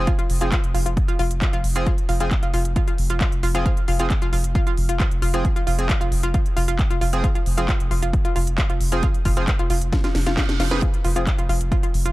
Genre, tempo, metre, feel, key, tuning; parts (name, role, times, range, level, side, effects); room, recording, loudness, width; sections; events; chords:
driving peak-time techno; 134 BPM; 4/4; straight; F minor; A4 = 439 Hz
sync-sweep polysynth; stabs; 0.0-11.2 s; F3 to Ab4; -30 LUFS; right 1 dB; chorus, sidechain pumping, dub echo
saturated sub bass; bass; 0.0-12.1 s; F1; -23 LUFS; equal; sidechain pumping, low-pass filter
analog pluck; riff; 0.1-12.1 s; F4 to F5; -27 LUFS; equal; chorus, tube saturation, sidechain pumping, dub echo
electronic kick drum; drums; 0.1-11.8 s; -21 LUFS; equal; overdrive
techno drum kit; drums; 0.1-12.1 s; handclaps, hi-hat, snare drum; -29 LUFS; equal; overdrive, sidechain pumping on hats, sidechain pumping on toms
reverse cymbal; sound effects; 10.1-10.8 s; -34 LUFS; right 8 dB
little or no reverb; dark, warm production; -18 LUFS; side -18 dB against mid
0.0-12.1 A section
drum fill 9.9-10.8; reverse cymbal 10.1-10.8